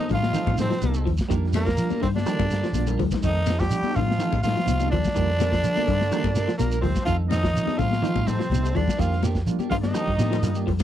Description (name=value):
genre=afrobeat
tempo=125 BPM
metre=4/4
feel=straight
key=F mixolydian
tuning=A4 = 439 Hz
part: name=raspy tenor saxophone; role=melody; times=0.0-10.6 s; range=Bb3 to G4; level=-28 LUFS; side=equal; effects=none
part: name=clear trombone section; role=second line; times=0.0-10.6 s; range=Bb2 to G3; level=-35 LUFS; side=right 5 dB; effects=none
part: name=warm trumpet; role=second line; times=0.0-10.6 s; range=Bb4 to G5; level=-36 LUFS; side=right 1 dB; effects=none
part: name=reed electric piano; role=accompaniment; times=0.0-10.7 s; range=G3 to F4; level=-33 LUFS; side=right 16 dB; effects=fast tremolo
part: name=clean electric guitar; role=stabs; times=0.0-10.7 s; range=F3 to Bb4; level=-33 LUFS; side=right 7 dB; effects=none
part: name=electric guitar through a small old amp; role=arpeggios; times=0.1-10.8 s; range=D3 to F3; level=-32 LUFS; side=left 3 dB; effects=none
part: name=vintage muted fingered electric bass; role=bass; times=0.1-10.8 s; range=Bb1 to F3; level=-25 LUFS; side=equal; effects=none
part: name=crunchy breakbeat drum kit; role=drums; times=0.1-10.8 s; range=hi-hat, kick drum, snare drum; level=-29 LUFS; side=equal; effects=none
part: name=congas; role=percussion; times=0.1-10.8 s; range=none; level=-30 LUFS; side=left 15 dB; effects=none
part: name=shekere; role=percussion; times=0.1-10.8 s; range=none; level=-31 LUFS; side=right 3 dB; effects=none
room=little or no reverb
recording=dry, close 1970s-style studio recording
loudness=-21 LUFS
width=side -11 dB against mid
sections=0.0-10.8 A section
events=drum fill 2.7-3.2, 10.0-10.8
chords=0.0 F7; 1.3 Ebmaj7/F; 3.2 F7; 5.1 Ebmaj7/F; 7.1 F7; 9.0 Ebmaj7/F